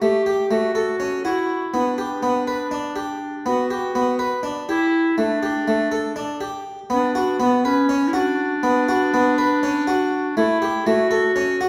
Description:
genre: contemporary instrumental, chamber music in an uneven meter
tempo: 243 BPM (eighths)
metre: 7/8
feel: straight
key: unclear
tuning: A4 = 440 Hz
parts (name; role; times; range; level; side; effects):
- clear clarinet; second line; 0.0-11.7 s; B3 to G4; -24 LUFS; equal; none
- harpsichord; arpeggios; 0.0-11.7 s; A3 to B4; -23 LUFS; equal; none
room: wet recital hall reverb, RT60 1.3 s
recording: heard from further back in the room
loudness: -21 LUFS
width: mono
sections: 0.0-6.9 A section; 6.9-11.7 B section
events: none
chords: 0.0 A7; 1.7 G; 5.2 A7sus4; 6.9 Bmadd9; 10.4 A

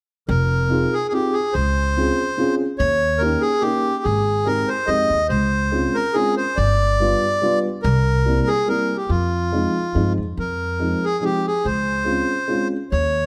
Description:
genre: musette waltz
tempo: 143 BPM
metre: 3/4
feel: straight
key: F minor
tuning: A4 = 440 Hz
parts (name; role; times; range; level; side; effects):
- accordion; melody; 0.3-13.3 s; F4 to Eb5; -23 LUFS; equal; none
- upright bass; bass; 0.3-13.3 s; F1 to G2; -24 LUFS; equal; none
- dark upright piano; accompaniment; 0.7-12.7 s; F3 to Ab4; -26 LUFS; equal; none
room: light reverb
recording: none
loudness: -20 LUFS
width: mono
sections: 0.3-10.4 A section; 10.4-13.3 A section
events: none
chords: 0.3 Fm7; 1.5 Dbmaj7; 2.8 Eb7; 4.1 Abmaj7; 5.3 Dbmaj7; 6.6 G7; 7.8 C7; 9.1 Fm7; 11.6 Dbmaj7

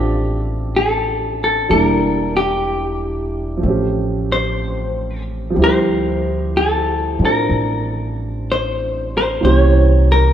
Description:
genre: jazz ballad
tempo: 62 BPM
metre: 4/4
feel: swing 69% on 8ths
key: unclear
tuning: A4 = 440 Hz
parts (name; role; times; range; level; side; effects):
- vintage hollow-body jazz guitar; melody; 0.0-10.3 s; G4 to Db5; -19 LUFS; left 2 dB; none
- warm grand piano; accompaniment; 0.0-10.3 s; E3 to E5; -20 LUFS; right 2 dB; none
- upright bass; bass; 0.0-10.3 s; E1 to A2; -19 LUFS; equal; none
room: wet plate reverb, RT60 2.5 s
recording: heard from further back in the room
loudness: -15 LUFS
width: side -10 dB against mid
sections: 0.0-10.3 A section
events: none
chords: 0.0 Fmaj9; 1.7 Em7b5; 3.6 A7alt; 5.6 Dm11; 9.4 C7b9

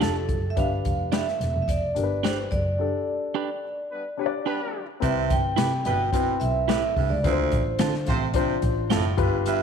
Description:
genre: uptempo 1960s-style soul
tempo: 108 BPM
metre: 4/4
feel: straight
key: D dorian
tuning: A4 = 439 Hz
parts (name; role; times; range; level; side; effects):
- vibraphone with hard mallets; melody; 0.0-9.6 s; A4 to G5; -28 LUFS; right 3 dB; none
- dark grand piano; accompaniment; 0.0-9.6 s; C4 to D5; -29 LUFS; left 11 dB; none
- clean electric guitar; stabs; 0.0-9.1 s; C4 to B4; -30 LUFS; right 11 dB; slapback echo
- warm double bass; bass; 0.0-9.6 s; E1 to D3; -27 LUFS; equal; none
- swinging big-band drum kit; drums; 0.0-9.6 s; hi-hat, kick drum, snare drum; -28 LUFS; left 2 dB; none
- warm horn section; second line; 3.9-9.6 s; G3 to C5; -36 LUFS; equal; none
- raspy baritone saxophone; riff; 5.0-9.6 s; D2 to C3; -30 LUFS; right 12 dB; none
room: light reverb, studio ambience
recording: 1960s-style stereo with parts hard left and right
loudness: -22 LUFS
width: side -7 dB against mid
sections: 0.0-5.0 A section; 5.0-9.6 B section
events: break 2.8-5.0; band accent 2.8-5.0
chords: 0.0 Dm; 0.6 G; 5.0 Cmaj7; 7.2 Dm7

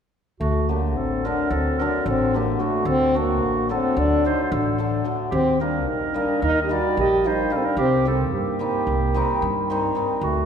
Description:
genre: balkan folk, Balkan wedding band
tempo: 220 BPM (eighths)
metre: 9/8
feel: straight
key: D phrygian dominant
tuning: A4 = 440 Hz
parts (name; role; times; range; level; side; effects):
- dark French horn; melody; 0.4-10.5 s; A3 to G4; -23 LUFS; left 1 dB; none
- mellow clarinet; second line; 0.4-10.5 s; F#4 to Eb5; -27 LUFS; right 4 dB; none
- upright bass; bass; 0.4-10.5 s; A1 to G2; -26 LUFS; equal; none
- hammered dulcimer; accompaniment; 0.7-10.3 s; D3 to Eb4; -26 LUFS; left 2 dB; none
room: wet concert hall reverb, RT60 2.1 s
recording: recorded in a church or concert hall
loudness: -19 LUFS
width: side -7 dB against mid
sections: 0.4-10.5 A section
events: none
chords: 0.4 D; 5.3 Eb; 7.8 Cm

